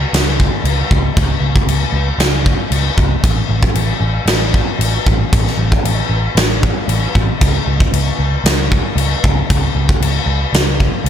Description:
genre	rock, shoegaze and dream pop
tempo	115 BPM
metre	4/4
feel	straight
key	unclear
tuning	A4 = 438 Hz
part	vintage muted picked electric bass	bass	0.0-11.1 s	A1 to C#2	-16 LUFS	equal	none
part	big rock drum kit	drums	0.1-11.1 s	crash cymbal, kick drum, snare drum	-14 LUFS	equal	none
room	little or no reverb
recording	none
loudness	-12 LUFS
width	side -9 dB against mid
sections	0.0-11.1 A section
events	none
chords	none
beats	0.13 0.65 | 1.16 1.68 2.20 2.71 | 3.23 3.75 4.27 4.79 | 5.31 5.83 6.36 6.88 | 7.40 7.92 8.45 8.97 | 9.49 10.01 10.53 11.06

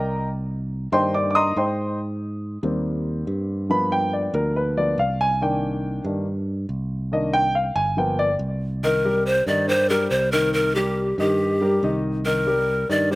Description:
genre	Afro-Cuban jazz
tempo	140 BPM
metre	4/4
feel	straight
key	C minor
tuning	A4 = 440 Hz
part	dark baby grand piano	accompaniment	0.0-13.2 s	Eb3 to Eb6	-22 LUFS	equal	slapback echo
part	fingered electric bass	bass	0.0-13.2 s	G1 to Ab2	-26 LUFS	right 1 dB	none
part	breathy bright large pan pipes	melody	8.8-13.2 s	G4 to D5	-20 LUFS	equal	slapback echo
room	little or no reverb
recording	recorded outdoors, with no room sound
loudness	-20 LUFS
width	side -20 dB against mid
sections	0.0-8.8 A section; 8.8-13.2 B section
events	grand piano solo 0.0-8.8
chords	0.0 Cm7; 2.0 Abmaj7; 3.7 G7#9; 5.4 Cm7; 8.0 G7#9; 8.8 Cm7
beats	| 0.29 0.72 1.14 1.57 | 2.00 2.42 2.85 3.27 | 3.70 4.13 4.55 4.98 | 5.41 5.84 6.26 6.69 | 7.12 7.55 7.98 8.40 | 8.83 9.26 9.69 10.12 | 10.55 10.98 11.40 11.83 | 12.26 12.69 13.11

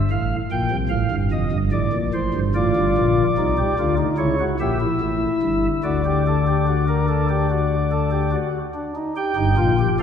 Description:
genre	classical, baroque-style 3-part fugue for pipe organ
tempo	73 BPM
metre	4/4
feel	straight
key	unclear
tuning	A4 = 440 Hz
part	pipe organ, flutes	solo	0.1-10.0 s	F1 to G5	-18 LUFS	left 1 dB	none
room	wet scoring stage reverb, RT60 1.9 s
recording	heard from further back in the room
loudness	-18 LUFS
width	side -8 dB against mid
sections	0.0-9.2 A section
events	none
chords	0.0 C7(no3); 0.9 F; 2.5 Am7b5; 4.2 C#dim7; 5.8 D; 9.2 Gm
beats	0.11 0.92 1.73 | 2.54 3.35 4.17 4.99 | 5.82 6.66 7.50 8.33 | 9.17 10.00

